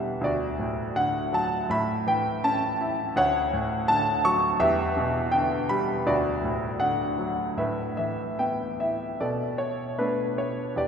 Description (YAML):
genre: classical, lyrical solo piano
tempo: 73-84 BPM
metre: 4/4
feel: rubato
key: D major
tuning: A4 = 440 Hz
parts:
  - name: clear grand piano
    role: solo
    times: 0.0-10.9 s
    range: D2 to C#6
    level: -24 LUFS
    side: equal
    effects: none
room: wet cathedral reverb, RT60 4.2 s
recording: recorded in a church or concert hall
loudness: -24 LUFS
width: side -7 dB against mid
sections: 0.0-9.2 A section; 9.2-10.9 B section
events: none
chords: 0.2 D; 1.7 A; 3.2 Dmaj7; 4.6 Em7; 6.1 D; 7.6 Asus2; 9.2 Bm7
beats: | 0.23 0.97 1.71 2.45 | 3.18 3.90 4.62 5.34 | 6.07 6.82 7.60 8.40 | 9.21 9.99 10.76